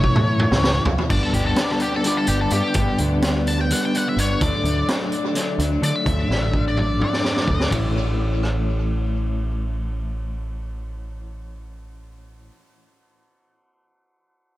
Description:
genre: psychedelic rock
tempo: 254 BPM (eighths)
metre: 7/8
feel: straight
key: A mixolydian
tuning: A4 = 441 Hz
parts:
  - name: octave-fuzz lead guitar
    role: melody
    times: 0.0-7.7 s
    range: G4 to A5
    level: -26 LUFS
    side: left 1 dB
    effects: wah, distortion, tape echo
  - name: electric guitar through a small old amp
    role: riff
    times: 0.0-12.5 s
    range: G2 to E4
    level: -24 LUFS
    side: left 1 dB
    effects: harmonic tremolo, low-pass filter, tape echo
  - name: deep dub picked electric bass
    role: bass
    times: 0.0-12.5 s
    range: G1 to D3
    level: -23 LUFS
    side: equal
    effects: none
  - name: raw garage drum kit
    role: drums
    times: 0.0-8.5 s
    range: crash cymbal, hi-hat, kick drum, ride cymbal, rim click, snare drum, toms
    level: -24 LUFS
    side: equal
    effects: tape echo
  - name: congas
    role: percussion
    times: 0.2-1.1 s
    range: none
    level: -34 LUFS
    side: right 3 dB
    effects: none
room: light reverb, small room ambience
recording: echo-heavy mix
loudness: -18 LUFS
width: side -15 dB against mid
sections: 0.0-1.1 A section; 1.1-7.7 B section; 7.7-11.0 C section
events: drum fill 0.0-1.1, 6.3-7.7; lead electric guitar solo 1.1-7.7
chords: 0.0 A; 1.1 G; 4.4 D; 7.7 A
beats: 0.15 0.38 0.62 0.85 | 1.09 1.33 1.56 1.80 2.03 2.27 2.51 | 2.74 2.98 3.21 3.45 3.69 3.92 4.16 | 4.40 4.63 4.87 5.11 5.34 5.58 5.82 | 6.05 6.29 6.53 6.76 7.00 7.24 7.47 | 7.71 7.95 8.19 8.42 8.66 8.90 9.13 | 9.37 9.61 9.85 10.08 10.32 10.56 10.80

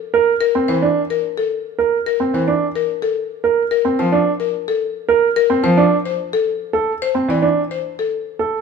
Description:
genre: classical, minimalist pattern music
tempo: 109 BPM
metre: 3/4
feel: straight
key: unclear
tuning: A4 = 439 Hz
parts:
  - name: warm grand piano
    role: arpeggios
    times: 0.1-8.6 s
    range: C4 to Bb4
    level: -17 LUFS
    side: right 5 dB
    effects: none
  - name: buzzing marimba with hard mallets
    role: melody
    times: 0.4-8.2 s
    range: A4 to D5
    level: -20 LUFS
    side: left 10 dB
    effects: none
  - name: bright concert grand piano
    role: accompaniment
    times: 0.7-7.5 s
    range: E3 to F3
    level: -20 LUFS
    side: right 2 dB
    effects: none
room: moderate large studio reverb, RT60 1.5 s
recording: minimal, uncompressed stereo recording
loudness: -15 LUFS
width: side -5 dB against mid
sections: 0.0-8.6 A section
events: none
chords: 0.0 C9; 2.5 Fsus4; 5.8 Amadd11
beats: 0.27 | 0.82 1.37 1.92 | 2.47 3.02 3.58 | 4.12 4.68 5.23 | 5.78 6.33 6.88 | 7.43 7.98 8.53

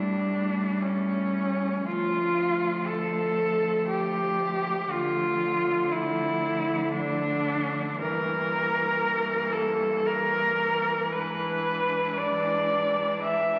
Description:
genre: classical, lyrical piece for cello ensemble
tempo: 58 BPM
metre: 3/4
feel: rubato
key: D minor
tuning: A4 = 440 Hz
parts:
  - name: rich cello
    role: melody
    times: 0.0-13.6 s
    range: C#4 to E5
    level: -28 LUFS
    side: equal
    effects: none
  - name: rich cello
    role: second line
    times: 0.0-13.6 s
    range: A3 to D4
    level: -41 LUFS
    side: equal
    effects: none
  - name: rich cello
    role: accompaniment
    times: 0.0-13.6 s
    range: D3 to G3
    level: -34 LUFS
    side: equal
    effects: none
  - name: rich cello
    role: bass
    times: 0.0-13.6 s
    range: D2 to A2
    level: -41 LUFS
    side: equal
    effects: none
room: wet concert hall reverb, RT60 2.1 s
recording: very old 78 rpm record, vinyl crackle, nothing above 7.5 kHz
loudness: -27 LUFS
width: mono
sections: 0.0-13.6 A section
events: none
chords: 0.0 A7; 1.9 Dm; 4.9 Dm/F; 8.0 Edim/G; 11.1 E7/G#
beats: 0.83 | 1.85 2.86 3.89 | 4.91 5.90 6.90 | 8.00 9.02 10.06 | 11.11 12.16 13.20

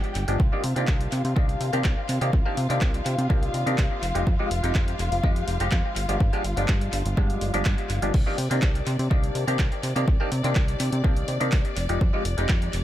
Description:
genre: filtered disco house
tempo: 124 BPM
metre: 4/4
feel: straight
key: C minor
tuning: A4 = 440 Hz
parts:
  - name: bright clav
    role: accompaniment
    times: 0.0-12.8 s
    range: Eb3 to G4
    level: -29 LUFS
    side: equal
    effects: phaser, sidechain pumping, low-pass filter, tape echo
  - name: dark symphonic violin section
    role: sustained chords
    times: 0.0-12.8 s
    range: F4 to G5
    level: -33 LUFS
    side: left 3 dB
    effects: sidechain pumping, low-pass filter
  - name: punchy analog drum machine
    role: drums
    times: 0.0-12.8 s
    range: crash cymbal, handclaps, hi-hat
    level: -34 LUFS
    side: equal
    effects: tape echo
  - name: plucky analog bass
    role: bass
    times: 0.2-12.8 s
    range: F1 to C3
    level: -26 LUFS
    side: equal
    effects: tube saturation, sidechain pumping, low-pass filter
  - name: electronic kick drum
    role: drums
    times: 0.4-12.6 s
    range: none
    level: -23 LUFS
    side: equal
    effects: none
room: little or no reverb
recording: echo-heavy mix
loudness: -22 LUFS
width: side -13 dB against mid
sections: 0.0-8.1 A section; 8.1-12.8 B section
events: band accent 7.7; drop 8.1-12.8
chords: 0.4 Cm9; 4.0 Fm9; 6.0 G7b9; 8.1 Cm9; 11.8 Fm9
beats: | 0.40 0.88 1.36 1.85 | 2.33 2.82 3.30 3.79 | 4.27 4.75 5.24 5.72 | 6.20 6.69 7.17 7.66 | 8.14 8.62 9.11 9.59 | 10.07 10.56 11.04 11.53 | 12.01 12.49

